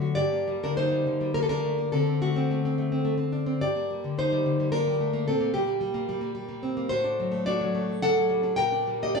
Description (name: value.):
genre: romantic piece for solo classical guitar.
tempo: 93-112 BPM.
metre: 3/4.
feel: rubato.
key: G minor.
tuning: A4 = 440 Hz.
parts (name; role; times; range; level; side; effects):
nylon-string guitar; solo; 0.0-9.2 s; G2 to G5; -24 LUFS; left 1 dB; none.
room: wet stone room reverb, RT60 1.1 s.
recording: band playing live in one room, studio ambience.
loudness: -24 LUFS.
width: side -4 dB against mid.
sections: 0.2-9.2 A section.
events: none.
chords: 0.2 Gm; 1.9 D7; 3.6 Gm; 5.3 Gm/Bb; 6.9 D7/A; 8.6 Gm/Bb.